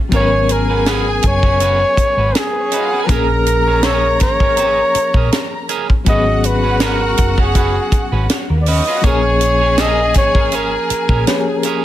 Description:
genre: lush 1970s-style soul.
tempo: 81 BPM.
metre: 4/4.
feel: swing 54% on 16ths.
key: G# dorian.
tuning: A4 = 441 Hz.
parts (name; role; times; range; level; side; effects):
overdriven reed electric piano; accompaniment; 0.0-11.8 s; E#3 to A#4; -22 LUFS; left 5 dB; fast tremolo.
warm symphonic violin section; second line; 0.1-11.6 s; A#3 to A#5; -23 LUFS; left 1 dB; none.
electric guitar at the edge of break-up; riff; 0.1-11.8 s; C#4 to C#5; -24 LUFS; right 7 dB; none.
hollow-body short-scale fingered electric bass; bass; 0.1-11.2 s; F#1 to D#2; -18 LUFS; equal; none.
tight funk drum kit; drums; 0.1-11.8 s; hi-hat, kick drum, snare drum; -17 LUFS; equal; none.
breathy flugelhorn; melody; 0.2-11.7 s; G#4 to D#5; -17 LUFS; equal; none.
worn celesta; texture; 2.7-3.4, 11.3-11.8 s; C#5; -27 LUFS; right 2 dB; none.
room: small room ambience.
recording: none.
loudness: -12 LUFS.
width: side -13 dB against mid.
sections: 0.0-11.8 A section.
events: none.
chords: 0.1 G#m11; 3.1 A#m7; 6.1 G#m11; 9.0 A#m7.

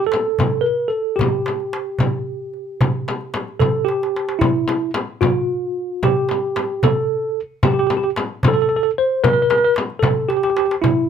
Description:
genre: Arabic maqam ensemble.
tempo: 75 BPM (dotted quarters).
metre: 6/8.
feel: straight.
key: G maqam rast.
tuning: A4 = 440 Hz.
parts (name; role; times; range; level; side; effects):
tine electric piano; melody; 0.0-11.1 s; E4 to C5; -18 LUFS; right 1 dB; medium stereo tremolo.
darbuka; percussion; 0.1-11.0 s; none; -22 LUFS; right 2 dB; none.
frame drum; percussion; 0.1-11.0 s; none; -22 LUFS; left 4 dB; none.
room: light reverb.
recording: none.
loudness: -17 LUFS.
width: side -8 dB against mid.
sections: 0.0-4.4 A section; 4.4-11.1 B section.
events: drum fill 3.9-4.4, 10.3-10.8.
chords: none.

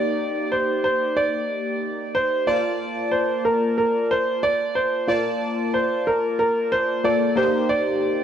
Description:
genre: pop.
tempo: 92 BPM.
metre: 4/4.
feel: straight.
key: Bb major.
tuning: A4 = 435 Hz.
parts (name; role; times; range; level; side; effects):
clear concert grand piano; melody; 0.0-8.2 s; Bb4 to D5; -21 LUFS; right 1 dB; none.
warm analog keys; accompaniment; 0.0-8.2 s; Bb3 to A5; -24 LUFS; left 2 dB; chorus, phaser.
room: moderate lush hall reverb, RT60 2.4 s.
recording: none.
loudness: -20 LUFS.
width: side -9 dB against mid.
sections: 0.0-8.2 A section.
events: none.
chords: 0.0 Ebmaj7; 2.5 Bbmaj7; 7.4 Cm7.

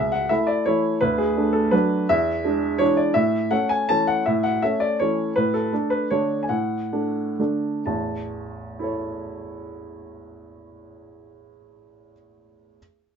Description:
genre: classical, piano waltz.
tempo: 119-179 BPM.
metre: 3/4.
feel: rubato.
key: A major.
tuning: A4 = 440 Hz.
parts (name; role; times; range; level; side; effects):
clear upright piano; solo; 0.0-12.8 s; A1 to A5; -20 LUFS; equal; none.
room: moderate studio ambience, RT60 0.5 s.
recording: nothing above 7.9 kHz.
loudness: -20 LUFS.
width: side -7 dB against mid.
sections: 0.0-7.9 A section; 7.9-10.7 B section.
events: slowing down 4.8-7.9.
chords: 0.0 A/C#; 1.0 Bm7/D; 2.1 E7; 3.2 A; 5.3 D/A; 7.9 A.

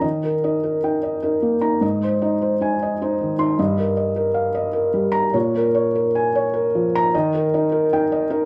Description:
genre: neoclassical minimalist piano.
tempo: 101 BPM.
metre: 3/4.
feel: rubato.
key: unclear.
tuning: A4 = 440 Hz.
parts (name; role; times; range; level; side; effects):
felt-muted upright piano; solo; 0.0-8.5 s; G2 to C6; -20 LUFS; equal; none.
room: wet large studio reverb, RT60 1.1 s.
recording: band playing live in one room.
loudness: -20 LUFS.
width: mono.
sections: 0.0-8.5 A section.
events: none.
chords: 0.0 Eb; 1.8 Ab; 3.6 Ebadd9/G; 5.3 Bbm7; 7.1 Eb.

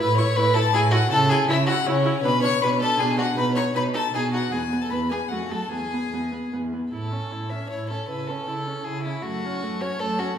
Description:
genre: quick classical-period movement for string quartet.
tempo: 157 BPM.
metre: 3/4.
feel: rubato.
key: A major.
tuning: A4 = 440 Hz.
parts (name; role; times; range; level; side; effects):
warm violin; melody; 0.0-10.4 s; C#5 to C#6; -27 LUFS; left 6 dB; none.
rich violin; second line; 0.0-10.4 s; C#4 to E5; -26 LUFS; equal; none.
warm viola; accompaniment; 0.0-10.4 s; A3 to E4; -30 LUFS; right 2 dB; none.
warm cello; bass; 0.0-10.3 s; E2 to C#3; -26 LUFS; right 2 dB; none.
room: wet recital hall reverb, RT60 1.5 s.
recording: heard from further back in the room.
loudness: -21 LUFS.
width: side -8 dB against mid.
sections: 0.0-6.9 A section; 6.9-10.4 B section.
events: none.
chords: 0.0 A5; 1.1 C#madd11; 2.2 Bm; 3.4 B; 4.5 E5; 5.3 F#m; 5.7 E; 6.9 A; 8.1 A/C#; 9.2 F#m.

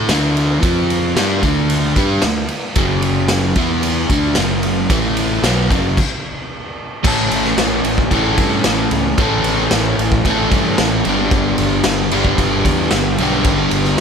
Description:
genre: garage rock duo or trio.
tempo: 112 BPM.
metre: 4/4.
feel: straight.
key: A mixolydian from 7.0 s.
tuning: A4 = 439 Hz.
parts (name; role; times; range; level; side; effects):
crunchy overdriven guitar; riff; 0.0-14.0 s; F#2 to A4; -16 LUFS; equal; none.
fuzz fingered electric bass; bass; 0.0-14.0 s; F#1 to G2; -22 LUFS; equal; overdrive.
raw garage drum kit; drums; 0.1-14.0 s; crash cymbal, kick drum, ride cymbal, snare drum; -18 LUFS; equal; none.
room: light reverb.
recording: none.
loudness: -13 LUFS.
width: side -6 dB against mid.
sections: 0.0-7.0 A section; 7.0-14.0 B section.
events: stop 6.0-7.0.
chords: 0.0 D5; 0.6 F5; 1.2 D5; 2.8 F#5; 3.6 E5; 4.1 D5; 4.4 F#5; 4.9 A5; 5.4 F#sus4; 6.0 N.C.; 7.0 A; 11.1 G.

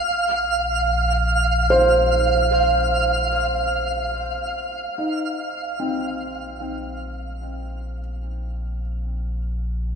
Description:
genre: ambient.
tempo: free time.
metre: none.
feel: none.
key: unclear.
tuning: A4 = 440 Hz.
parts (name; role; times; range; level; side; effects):
felt-muted upright piano; arpeggios; 0.0-10.0 s; C4 to C5; -23 LUFS; right 1 dB; tape echo.
twinkling granular texture; texture; 0.0-4.9 s; F5; -22 LUFS; right 2 dB; built-in reverb.
round analog bass; bass; 0.1-10.0 s; Bb1; -26 LUFS; equal; none.
room: wet plate reverb, RT60 2.9 s.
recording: echo-heavy mix.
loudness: -19 LUFS.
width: side -6 dB against mid.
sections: 0.0-4.9 A section; 4.9-10.0 B section.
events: fade-out on analog synth bass 0.0-4.9; fade-in on analog synth bass 4.9-10.0.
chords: 0.1 Bbsus2.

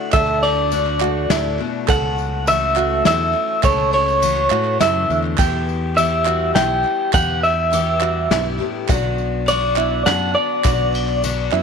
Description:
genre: indie folk with a building arrangement.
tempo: 103 BPM.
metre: 3/4.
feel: straight.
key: unclear.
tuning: A4 = 437 Hz.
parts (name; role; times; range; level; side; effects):
electric guitar through a small old amp; melody; 0.0-11.6 s; C#5 to G5; -18 LUFS; equal; tremolo.
fingerpicked steel-string acoustic guitar; accompaniment; 0.0-11.6 s; D2 to G4; -29 LUFS; left 11 dB; none.
picked twelve-string acoustic guitar; accompaniment; 0.0-11.6 s; B2 to G4; -28 LUFS; left 13 dB; none.
open-back banjo; arpeggios; 0.0-11.6 s; D4 to A4; -24 LUFS; right 13 dB; none.
fingered electric bass; bass; 0.1-11.6 s; B1 to A2; -24 LUFS; equal; none.
soft brush drum kit; drums; 0.1-11.4 s; kick drum, ride cymbal, snare drum; -24 LUFS; left 2 dB; none.
group handclap; percussion; 0.1-11.6 s; none; -30 LUFS; right 15 dB; none.
tambourine; percussion; 0.1-11.4 s; none; -34 LUFS; left 16 dB; none.
room: light reverb, small room ambience.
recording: 1960s-style stereo with parts hard left and right.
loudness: -16 LUFS.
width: side -6 dB against mid.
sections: 0.0-11.6 A section.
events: none.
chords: 0.0 D; 1.9 A6/C#; 5.4 Em; 8.9 Bm.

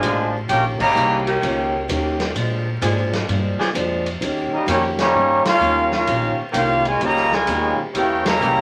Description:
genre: jazz, big band swing.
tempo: 129 BPM.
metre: 4/4.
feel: swing 66% on 8ths.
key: unclear.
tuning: A4 = 435 Hz.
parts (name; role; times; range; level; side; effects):
warm trumpet section; melody; 0.0-1.2, 4.5-8.6 s; Bb3 to Bb5; -24 LUFS; equal; none.
muted trombone section; second line; 0.0-1.2, 4.5-8.6 s; Bb2 to G4; -22 LUFS; equal; none.
picked acoustic archtop guitar; accompaniment; 0.0-8.6 s; Bb2 to G4; -28 LUFS; equal; none.
upright bass; bass; 0.0-8.6 s; A1 to Bb2; -29 LUFS; equal; none.
swinging big-band drum kit; drums; 0.0-8.6 s; crash cymbal, hi-hat, kick drum, ride cymbal, snare drum; -29 LUFS; equal; none.
clear saxophone section; sustained chords; 1.3-8.6 s; Eb3 to Ab4; -26 LUFS; equal; none.
room: wet studio reverb, RT60 0.5 s.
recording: vinyl crackle.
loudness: -19 LUFS.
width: mono.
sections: 0.0-8.6 A section.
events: band accent 0.7, 5.4, 8.2.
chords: 0.5 Eb7; 2.4 Bb7; 4.2 Eb7; 7.9 Edim7.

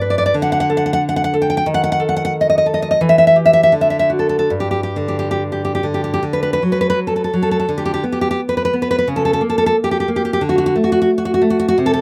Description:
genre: romantic piece for solo classical guitar.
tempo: 62-93 BPM.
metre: 2/4.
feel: rubato.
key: G major, D major from 6.2 s.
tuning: A4 = 440 Hz.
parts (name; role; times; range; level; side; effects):
nylon-string guitar; solo; 0.0-12.0 s; G2 to G5; -16 LUFS; equal; none.
room: little or no reverb.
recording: recorded outdoors, with no room sound.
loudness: -16 LUFS.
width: mono.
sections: 0.0-6.2 A section; 6.2-12.0 B section.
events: none.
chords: 0.3 D5; 1.7 D#dim; 3.0 Em; 3.7 D; 4.5 G5; 6.2 D; 7.7 G/D; 9.1 A7b9/C#; 10.4 D5.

